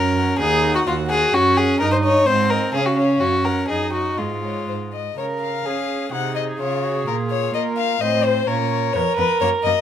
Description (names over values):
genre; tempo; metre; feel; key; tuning
quick classical-period movement for string quartet; 127 BPM; 2/4; rubato; Db major; A4 = 440 Hz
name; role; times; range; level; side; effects
rich violin; melody; 0.0-9.8 s; Bb4 to F#5; -25 LUFS; left 10 dB; none
warm violin; second line; 0.0-9.7 s; A#3 to Db5; -21 LUFS; left 2 dB; none
rich viola; accompaniment; 0.0-9.8 s; Ab3 to Db5; -24 LUFS; right 3 dB; none
warm cello; bass; 0.0-9.7 s; D#2 to Db4; -25 LUFS; right 4 dB; none
room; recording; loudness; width
light reverb; none; -17 LUFS; side -10 dB against mid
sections
0.0-5.2 A section; 5.2-9.8 B section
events
none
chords
0.4 D#m; 1.3 Gb5; 1.8 Eb7/G; 2.3 Ab; 2.7 Db; 3.2 Gb; 3.7 Ebm/Gb; 4.2 Db/Ab; 5.2 Db; 6.1 Ab7/C; 6.6 Db; 7.1 Bb5; 8.0 Adim; 8.5 Bbm; 8.9 C#7